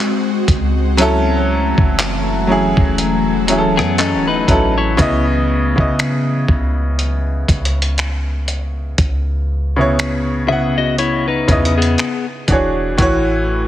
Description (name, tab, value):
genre	contemporary R&B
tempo	60 BPM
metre	4/4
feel	swing 58% on 16ths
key	C# minor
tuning	A4 = 440 Hz
part	clear grand piano	accompaniment	0.0-13.7 s	A2 to F#5	-18 LUFS	equal	none
part	ethereal airy pad	sustained chords	0.0-4.9 s	E3 to F#4	-21 LUFS	left 2 dB	ensemble chorus, built-in reverb, sidechain pumping
part	soft 808-style bass	bass	0.5-13.7 s	E1 to C#3	-19 LUFS	equal	none
part	dusty soul sampler-style drum kit	drums	0.5-13.3 s	finger snaps, handclaps, hi-hat, kick drum, rim click	-18 LUFS	equal	vintage 12-bit sampler grit
part	glassy wavetable pluck	texture	1.0-5.4 s	C#5 to D#5	-31 LUFS	equal	none
part	clean electric guitar	arpeggios	3.8-12.3 s	B3 to E5	-19 LUFS	left 5 dB	digital delay
room	light reverb, digital ambience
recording	heavily compressed radio sound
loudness	-13 LUFS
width	side -12 dB against mid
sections	0.0-5.0 A section; 5.0-13.7 B section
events	none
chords	0.0 G#7; 1.0 F#m7; 5.0 C#m9; 12.0 E13; 13.0 A6